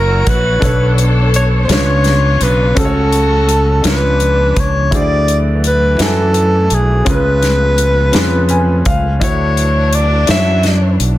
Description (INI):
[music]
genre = slow gospel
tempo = 56 BPM (dotted quarters)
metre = 6/8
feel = straight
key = unclear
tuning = A4 = 440 Hz
[part]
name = warm alto saxophone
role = melody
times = 0.0-11.0 s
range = G#4 to E5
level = -16 LUFS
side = equal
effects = none
[part]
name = warm grand piano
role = accompaniment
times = 0.0-11.2 s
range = B2 to G#5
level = -19 LUFS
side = left 1 dB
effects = none
[part]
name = warm symphonic string section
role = sustained chords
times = 0.0-11.2 s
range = E3 to C#5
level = -23 LUFS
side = equal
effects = none
[part]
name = modern bright fingered electric bass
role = bass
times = 0.0-11.2 s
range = F#1 to F#2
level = -14 LUFS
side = equal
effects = none
[part]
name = natural country drum kit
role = drums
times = 0.3-11.2 s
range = hi-hat, kick drum, snare drum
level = -17 LUFS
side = equal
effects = none
[sound]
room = moderate large studio reverb, RT60 0.9 s, small room ambience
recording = dense, heavily limited modern master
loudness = -10 LUFS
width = side -15 dB against mid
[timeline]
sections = 0.0-11.2 A section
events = grand piano fill 8.1-9.2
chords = 0.0 F#7; 0.6 Bm9; 1.7 C#7b9; 2.8 F#m/C#; 3.8 C#7b9; 4.9 Dadd9; 7.1 C#7; 9.2 Dmaj9